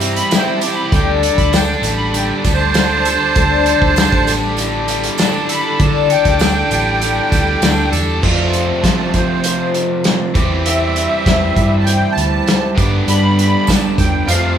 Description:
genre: folk rock and heartland rock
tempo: 99 BPM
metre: 4/4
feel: straight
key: unclear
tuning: A4 = 440 Hz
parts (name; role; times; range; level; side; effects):
- picked twelve-string acoustic guitar; accompaniment; 0.0-14.6 s; D3 to C5; -21 LUFS; left 6 dB; none
- mellow tonewheel organ; sustained chords; 0.0-14.6 s; E3 to A5; -29 LUFS; right 2 dB; slow rotary speaker
- cranked stack guitar; riff; 0.0-14.6 s; F2 to A4; -19 LUFS; right 2 dB; overdrive
- hollow-body short-scale fingered electric bass; bass; 0.0-14.6 s; A1 to G3; -19 LUFS; equal; none
- loose indie drum kit; drums; 0.0-14.4 s; crash cymbal, hi-hat, kick drum, snare drum; -17 LUFS; equal; none
- tambourine; percussion; 0.0-8.1, 13.7-13.8 s; none; -31 LUFS; right 8 dB; none
- musette accordion; melody; 0.1-14.6 s; C5 to B5; -19 LUFS; right 3 dB; none
room: wet large studio reverb, RT60 1.3 s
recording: band playing live in one room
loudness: -12 LUFS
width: side -9 dB against mid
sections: 0.0-8.2 A section; 8.2-14.6 B section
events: accordion solo 0.0-8.2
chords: 0.0 C; 0.9 Dsus4; 8.2 F; 10.4 C/E; 12.8 G

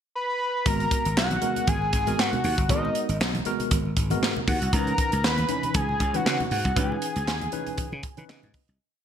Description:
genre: early-eighties boogie funk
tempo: 118 BPM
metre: 4/4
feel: swing 56% on 16ths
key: G# minor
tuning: A4 = 440 Hz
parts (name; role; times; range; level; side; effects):
- fat analog lead; melody; 0.2-8.5 s; D#5 to B5; -28 LUFS; equal; none
- tine electric piano; accompaniment; 0.7-8.8 s; E3 to G#5; -31 LUFS; left 1 dB; medium stereo tremolo
- slap bass; bass; 0.7-8.8 s; G1 to C#3; -28 LUFS; equal; none
- tight funk drum kit; drums; 0.7-8.8 s; handclaps, hi-hat, kick drum, snare drum; -27 LUFS; equal; gated reverb
- congas; percussion; 0.7-8.5 s; none; -36 LUFS; right 3 dB; none
room: light reverb, small room ambience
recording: bright 1980s-style digital production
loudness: -22 LUFS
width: side -8 dB against mid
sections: 0.0-0.7 pickup bar; 0.7-8.8 verse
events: fade-out 6.8-8.8; tine electric piano fill 7.8-8.8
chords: 0.0 N.C.; 0.7 G#m9; 4.7 C#m9

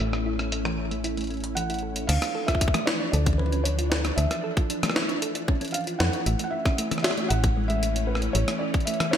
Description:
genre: IDM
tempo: 115 BPM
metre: 4/4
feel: straight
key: unclear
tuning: A4 = 439 Hz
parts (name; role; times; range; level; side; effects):
- felt-muted upright piano; melody; 0.0-9.2 s; B4 to F#5; -32 LUFS; equal; ping-pong delay
- soft string machine; sustained chords; 0.0-9.2 s; E3 to E4; -33 LUFS; equal; ensemble chorus, sidechain pumping
- thumb-piano-like synth pluck; arpeggios; 0.0-9.2 s; E3 to A4; -33 LUFS; right 2 dB; chorus, ping-pong delay
- metallic FM bass; bass; 0.0-8.4 s; A1 to F2; -26 LUFS; equal; none
- jungle sampler-style drum kit; drums; 0.0-9.2 s; crash cymbal, hi-hat, rim click, snare drum, toms; -28 LUFS; left 1 dB; gated reverb
- electronic kick drum; drums; 2.5-8.8 s; none; -24 LUFS; equal; none
room: light reverb, digital ambience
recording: bright 1980s-style digital production, low-pass filter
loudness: -23 LUFS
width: side -9 dB against mid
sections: 0.0-2.1 A section; 2.1-9.2 B section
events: filter sweep on drum 0.0-2.1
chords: 0.0 A; 2.1 Dmadd9; 6.3 A

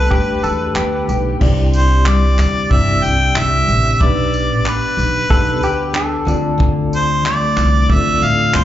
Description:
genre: acoustic pop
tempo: 92 BPM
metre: 4/4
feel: swing 55% on 16ths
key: C major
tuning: A4 = 440 Hz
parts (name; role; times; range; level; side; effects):
- bright harmonica; melody; 0.0-8.6 s; B4 to G5; -18 LUFS; equal; slapback echo, digital delay
- direct-recorded clean electric guitar; second line; 0.0-1.4, 5.3-6.7 s; G4 to A4; -22 LUFS; left 1 dB; tremolo, slapback echo, digital delay
- picked steel-string acoustic guitar; accompaniment; 0.0-8.6 s; C3 to C5; -21 LUFS; left 1 dB; double-tracked left and right
- reed electric piano; accompaniment; 0.0-8.6 s; A3 to D5; -25 LUFS; left 2 dB; fast tremolo, slapback echo
- upright bass; bass; 0.0-8.6 s; G1 to E2; -17 LUFS; equal; none
- natural country drum kit; drums; 0.1-8.6 s; crash cymbal, handclaps, kick drum, tambourine; -19 LUFS; equal; none
room: little or no reverb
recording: live gig heard through the venue's PA, club reverb, nothing above 7.6 kHz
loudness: -13 LUFS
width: side -12 dB against mid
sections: 0.0-1.4 A section; 1.4-8.6 B section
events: none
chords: 0.0 Gadd9; 1.4 Cadd9; 4.0 G; 6.3 Dm7

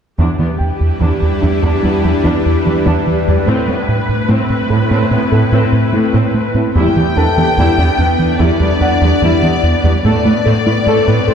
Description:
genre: cinematic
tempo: 73 BPM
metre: 4/4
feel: straight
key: E minor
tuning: A4 = 440 Hz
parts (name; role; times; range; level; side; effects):
- rich symphonic viola section; accompaniment; 0.2-11.3 s; G3 to C5; -19 LUFS; equal; none
- bowed-like drone; sustained chords; 0.6-11.3 s; G3 to B4; -18 LUFS; left 1 dB; built-in reverb, phaser
- tight sequenced synth; arpeggios; 0.2-11.3 s; E3 to A4; -22 LUFS; left 1 dB; none
- rubbery square bass; riff; 0.2-11.3 s; E2 to A3; -15 LUFS; right 1 dB; none
- rich studio cello section; bass; 0.2-11.3 s; E2 to A2; -19 LUFS; right 1 dB; none
- clear concert grand piano; texture; 0.6-11.3 s; A4 to A5; -24 LUFS; left 2 dB; ping-pong delay
- rich symphonic violin section; melody; 6.8-11.3 s; D5 to G5; -18 LUFS; left 5 dB; none
room: wet scoring stage reverb, RT60 1.9 s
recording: heard from further back in the room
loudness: -11 LUFS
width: side -7 dB against mid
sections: 0.2-6.8 A section; 6.8-11.3 B section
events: none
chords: 0.2 Em7; 3.5 Amadd9; 6.8 Em7; 10.0 Amadd9

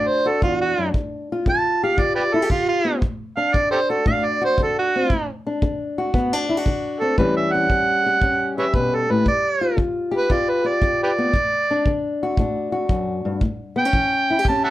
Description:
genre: acoustic country blues, solo or duo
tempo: 116 BPM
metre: 4/4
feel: swing 68% on 8ths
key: unclear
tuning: A4 = 441 Hz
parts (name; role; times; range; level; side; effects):
- overdriven harmonica; melody; 0.0-14.7 s; F4 to A5; -19 LUFS; right 2 dB; none
- fingerpicked old ladder-braced acoustic guitar; accompaniment; 0.0-14.7 s; D2 to G4; -22 LUFS; left 2 dB; none
- kick drum; drums; 0.4-14.6 s; none; -23 LUFS; equal; none
room: moderate studio ambience, RT60 0.5 s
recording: none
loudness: -18 LUFS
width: side -15 dB against mid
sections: 0.0-14.7 A section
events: none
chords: 0.0 D; 0.9 G7(no3); 3.0 D; 7.2 A7; 9.3 G7; 11.3 D; 13.4 A7

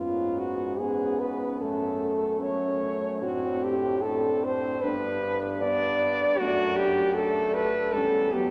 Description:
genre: classical, lyrical piece for horn quartet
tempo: 72-79 BPM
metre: 4/4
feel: rubato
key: unclear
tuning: A4 = 439 Hz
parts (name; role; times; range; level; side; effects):
- clear French horn; melody; 0.0-8.5 s; E#4 to D5; -28 LUFS; equal; none
- mellow French horn; second line; 0.0-8.5 s; B3 to D4; -37 LUFS; equal; none
- warm French horn; accompaniment; 0.0-8.5 s; F#3 to C4; -36 LUFS; equal; none
- mellow French horn; bass; 0.0-8.5 s; E2 to A2; -38 LUFS; equal; none
room: wet cathedral reverb, RT60 5.5 s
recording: none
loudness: -27 LUFS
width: mono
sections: 0.0-8.5 A section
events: none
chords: 0.0 C#5/G#; 1.6 F#m; 3.2 D5/A; 4.8 G; 6.4 D/F#; 7.9 C#dim/E

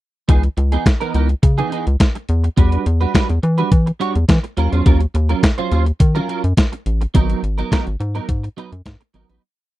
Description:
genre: early-eighties boogie funk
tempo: 105 BPM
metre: 4/4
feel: straight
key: C# dorian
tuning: A4 = 440 Hz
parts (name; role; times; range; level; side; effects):
- clean electric guitar; riff; 0.3-9.4 s; E3 to C#5; -22 LUFS; right 5 dB; ensemble chorus
- rubbery square bass; bass; 0.3-9.4 s; G#1 to E3; -16 LUFS; equal; none
- crisp 8-bit digital drum machine; drums; 0.3-9.4 s; hi-hat, kick drum, snare drum; -14 LUFS; equal; none
room: little or no reverb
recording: dry, close 1970s-style studio recording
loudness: -14 LUFS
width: side -16 dB against mid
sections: 0.3-9.4 breakdown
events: fade-out 7.1-9.4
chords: 0.3 C#m9; 2.3 Em9; 4.6 D#m9; 7.1 G#m9

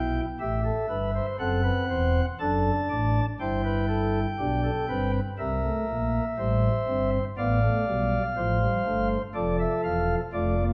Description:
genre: classical, baroque-style 4-part fugue for pipe organ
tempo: 60 BPM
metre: 4/4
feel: straight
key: F major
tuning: A4 = 439 Hz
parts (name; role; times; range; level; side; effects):
- pipe organ, flutes; solo; 0.0-10.7 s; E1 to A5; -26 LUFS; equal; none
room: wet recital hall reverb, RT60 1.4 s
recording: none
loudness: -26 LUFS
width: mono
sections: 0.0-1.4 A section; 1.4-10.7 B section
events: none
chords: 0.0 C; 1.4 D7; 3.4 G; 5.4 C7; 7.4 F/A; 9.4 Dm

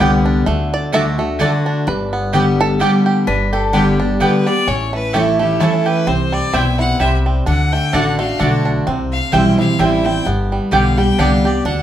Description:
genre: bluegrass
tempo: 129 BPM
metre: 3/4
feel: swing 55% on 8ths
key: G major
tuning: A4 = 440 Hz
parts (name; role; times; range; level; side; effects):
- bluegrass banjo; melody; 0.0-11.8 s; G3 to E5; -22 LUFS; right 3 dB; none
- picked steel-string acoustic guitar; accompaniment; 0.0-11.8 s; G2 to G4; -16 LUFS; equal; none
- mandolin; stabs; 0.0-11.3 s; A3 to A5; -21 LUFS; right 2 dB; none
- upright bass; bass; 0.0-11.8 s; G1 to D2; -20 LUFS; equal; none
- lap resonator guitar; second line; 3.3-4.1 s; G4 to B4; -22 LUFS; left 4 dB; none
- bright fiddle; melody; 4.2-11.8 s; G4 to G5; -22 LUFS; left 2 dB; none
room: moderate large studio reverb, RT60 1.1 s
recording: none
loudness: -13 LUFS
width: side -11 dB against mid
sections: 0.0-3.3 A section; 3.3-11.8 B section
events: five-string banjo solo 0.0-3.3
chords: 0.5 D; 1.9 G; 4.7 A; 6.1 C; 7.5 D; 8.9 C; 10.3 G

